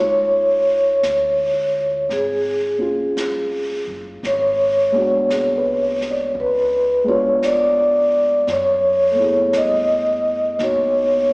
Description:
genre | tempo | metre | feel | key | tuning
jazz ballad | 56 BPM | 4/4 | swing 66% on 8ths | unclear | A4 = 440 Hz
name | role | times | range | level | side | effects
vibraphone with medium mallets | melody | 0.0-11.3 s | Ab4 to Eb5 | -16 LUFS | equal | slapback echo
dark upright piano | accompaniment | 0.0-11.3 s | Ab3 to D5 | -26 LUFS | equal | slapback echo
upright bass | bass | 0.0-11.3 s | Gb1 to G2 | -38 LUFS | equal | none
jazz brush drum kit | drums | 1.0-11.3 s | brushed snare drum, hi-hat, snare drum | -34 LUFS | equal | slapback echo
room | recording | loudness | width
moderate club reverb, RT60 0.6 s | live gig heard through the venue's PA, recital hall reverb, small speaker sound | -15 LUFS | side -31 dB against mid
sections
0.0-11.3 A section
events
none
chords
0.0 Db; 4.2 Abm7b5; 6.4 Db7b9; 8.5 Gbm11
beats
1.03 2.10 3.17 | 4.23 5.29 6.36 7.41 | 8.47 9.53 10.59

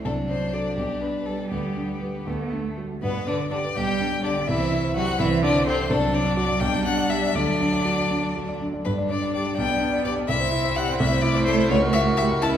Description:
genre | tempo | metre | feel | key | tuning
quick classical-period movement for piano quartet | 77-87 BPM (dotted quarters) | 6/8 | rubato | G major | A4 = 440 Hz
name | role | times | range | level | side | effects
clear violin | second line | 0.0-12.6 s | A3 to G4 | -28 LUFS | left 2 dB | none
rich cello | second line | 0.0-12.6 s | B2 to C#4 | -28 LUFS | right 4 dB | none
dark concert grand piano | accompaniment | 0.0-12.6 s | B1 to D5 | -25 LUFS | equal | none
rich violin | melody | 0.1-12.5 s | G4 to A5 | -27 LUFS | left 4 dB | none
room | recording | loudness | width
wet recital hall reverb, RT60 1.5 s | heard from further back in the room | -21 LUFS | side -9 dB against mid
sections
0.0-3.0 A section; 3.0-12.6 B section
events
none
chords
0.1 D7/C; 0.8 G/B; 1.5 G/D; 2.3 D; 3.0 G; 3.8 G/B; 4.5 C; 5.2 Am/C; 5.9 D7/C; 6.6 G/B; 7.4 D; 8.9 G5; 9.6 G/B; 10.3 C; 11.0 Am/C; 11.7 C#dim7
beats
| 0.06 0.78 | 1.52 2.27 | 3.03 3.76 | 4.48 5.20 | 5.90 6.61 | 7.36 8.11 | 8.85 9.57 | 10.29 11.00 | 11.70 12.43

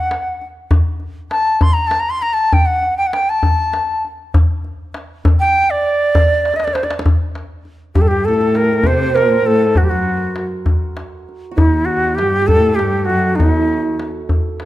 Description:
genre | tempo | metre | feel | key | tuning
Persian modal ensemble | 66 BPM (dotted quarters) | 6/8 | straight | unclear | A4 = 440 Hz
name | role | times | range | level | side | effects
breathy bright ney | melody | 0.0-14.1 s | Eb4+40c to C6 | -15 LUFS | equal | none
tombak | percussion | 0.1-14.7 s | none | -16 LUFS | left 1 dB | none
rich cello | second line | 8.0-14.1 s | Eb2+45c to C3 | -20 LUFS | left 1 dB | none
santur | second line | 8.0-14.7 s | Eb4+45c to C5 | -23 LUFS | right 6 dB | none
room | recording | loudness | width
light reverb | close, detailed microphones | -13 LUFS | side -15 dB against mid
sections
0.0-7.0 A section; 7.0-14.7 B section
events
drum fill 6.4-7.0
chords
none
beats
0.72 | 1.63 2.53 | 3.43 4.34 | 5.24 6.14 | 7.05 7.95 | 8.86 9.77 | 10.67 11.58 | 12.48 13.39 | 14.30

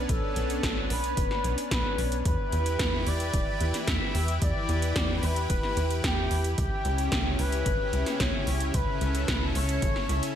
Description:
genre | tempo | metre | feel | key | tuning
synthwave | 111 BPM | 4/4 | straight | unclear | A4 = 438 Hz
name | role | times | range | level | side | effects
lush unison pad | sustained chords | 0.0-10.4 s | C#3 to B4 | -33 LUFS | left 1 dB | chorus, sidechain pumping
tight sequencer bass | bass | 0.0-10.2 s | E1 to E2 | -29 LUFS | equal | none
expressive portamento lead | melody | 0.1-10.3 s | G4 to E5 | -32 LUFS | left 1 dB | lush chorus, ping-pong delay
80s electronic pad drums | drums | 0.1-10.3 s | hi-hat, snare drum | -32 LUFS | equal | gated reverb
electronic kick drum | drums | 0.1-9.9 s | none | -32 LUFS | equal | none
room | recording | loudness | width
light reverb | none | -25 LUFS | side -10 dB against mid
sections
0.0-10.4 A section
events
none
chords
0.0 Bmadd9; 2.3 Em; 6.6 C#dim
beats
| 0.09 0.63 1.18 1.72 | 2.26 2.80 3.34 3.88 | 4.42 4.96 5.50 6.04 | 6.58 7.12 7.66 8.20 | 8.74 9.28 9.82

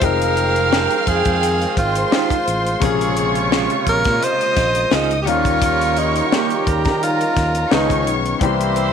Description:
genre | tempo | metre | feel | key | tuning
lush 1970s-style soul | 86 BPM | 4/4 | swing 54% on 16ths | F minor | A4 = 440 Hz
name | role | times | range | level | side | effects
breathy tenor saxophone | melody | 0.0-8.9 s | Eb4 to C5 | -20 LUFS | right 1 dB | none
warm symphonic violin section | second line | 0.0-8.9 s | Bb4 to F6 | -23 LUFS | equal | none
clear grand piano | accompaniment | 0.0-8.9 s | C3 to G5 | -24 LUFS | left 12 dB | none
mellow French horn section | sustained chords | 0.0-8.9 s | Bb2 to Ab4 | -29 LUFS | equal | none
mellow horn section | stabs | 0.0-8.9 s | C3 to G5 | -25 LUFS | right 15 dB | tube saturation
fingered electric bass | bass | 0.0-8.9 s | F1 to Eb3 | -23 LUFS | right 1 dB | none
tight funk drum kit | drums | 0.0-8.9 s | hi-hat, kick drum, snare drum | -21 LUFS | left 3 dB | none
electric guitar through a small old amp | riff | 0.7-7.9 s | Ab3 to Db5 | -24 LUFS | right 17 dB | phaser
room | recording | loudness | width
light reverb, small room ambience | 1960s-style stereo with parts hard left and right | -15 LUFS | side -7 dB against mid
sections
0.0-8.9 A section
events
none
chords
0.0 Fm9; 2.8 Bbm9; 5.3 Eb9; 7.7 Db9; 8.4 C7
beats
| 0.02 0.72 1.42 2.12 | 2.82 3.52 4.21 4.92 | 5.61 6.31 7.01 7.71 | 8.41

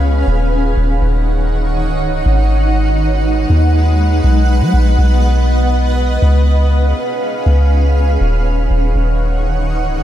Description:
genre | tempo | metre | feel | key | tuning
hip hop, atmospheric cloud-rap | 121 BPM | 4/4 | half-time | Eb minor | A4 = 441 Hz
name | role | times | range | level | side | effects
granular cloud pad | sustained chords | 0.0-10.0 s | Eb3 to Gb5 | -17 LUFS | equal | built-in reverb
soft 808-style bass | bass | 0.0-10.0 s | Db1 to F#3 | -12 LUFS | equal | none
room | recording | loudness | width
digital ambience | dark, warm production | -11 LUFS | side -12 dB against mid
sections
0.3-10.0 A section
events
none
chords
0.3 Ebm7; 2.3 Abm7; 4.2 B; 6.2 Db7; 8.2 Ebm7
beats
| 0.27 0.77 1.26 1.76 | 2.26 2.75 3.25 3.74 | 4.24 4.74 5.23 5.73 | 6.22 6.72 7.21 7.71 | 8.21 8.70 9.20 9.69

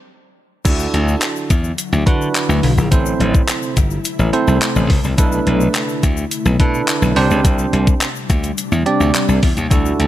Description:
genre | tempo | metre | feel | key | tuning
dance-pop | 106 BPM | 4/4 | straight | unclear | A4 = 438 Hz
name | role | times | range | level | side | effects
bell-like tine electric piano | accompaniment | 0.6-10.1 s | C4 to D5 | -20 LUFS | right 4 dB | sidechain pumping
ethereal airy pad | sustained chords | 1.4-10.1 s | C3 to E4 | -24 LUFS | left 3 dB | ensemble chorus, built-in reverb, sidechain pumping
glassy slap bass | bass | 0.7-10.1 s | G1 to D3 | -16 LUFS | left 1 dB | sidechain pumping
clean 12-bit digital drum machine | drums | 0.7-10.1 s | crash cymbal, handclaps, hi-hat, kick drum | -17 LUFS | equal | none
tube shaker | percussion | 0.7-10.0 s | none | -30 LUFS | left 19 dB | none
room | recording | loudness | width
little or no reverb | none | -14 LUFS | side -13 dB against mid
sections
0.7-10.1 A section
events
stop 0.0-0.7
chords
0.0 N.C.; 0.7 Dadd9; 2.9 Am; 5.2 E7sus4/B; 7.2 Csus2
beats
0.09 | 0.65 1.22 1.79 2.35 | 2.92 3.48 4.05 4.62 | 5.18 5.75 6.31 6.88 | 7.45 8.01 8.58 9.14 | 9.71

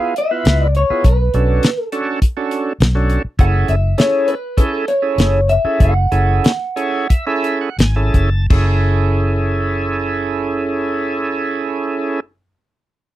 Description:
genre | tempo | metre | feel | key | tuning
straight-eighth soul blues | 82-102 BPM | 4/4 | straight | F# minor | A4 = 440 Hz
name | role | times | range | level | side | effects
electric guitar through a small old amp | melody | 0.0-7.1 s | A4 to F#5 | -18 LUFS | equal | lush chorus
overdriven tonewheel organ | accompaniment | 0.0-12.2 s | B3 to A5 | -19 LUFS | right 3 dB | slow rotary speaker
damped 70s drum kit | drums | 0.2-8.7 s | crash cymbal, hi-hat, kick drum, snare drum | -14 LUFS | equal | none
vintage muted fingered electric bass | bass | 0.5-12.5 s | F#1 to C#2 | -16 LUFS | equal | none
room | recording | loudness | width
little or no reverb | dry, close 1970s-style studio recording | -14 LUFS | side -14 dB against mid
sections
0.0-8.5 A section; 8.5-11.4 B section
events
slowing down 3.4-8.5; tonewheel organ fill 6.4-8.5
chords
0.0 C#7#9; 1.0 Bm7; 3.4 F#m7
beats
0.46 | 1.04 1.63 2.22 2.80 | 3.39 3.98 4.58 5.18 | 5.80 6.44 7.10 7.79 | 8.51 9.24 9.97 10.71

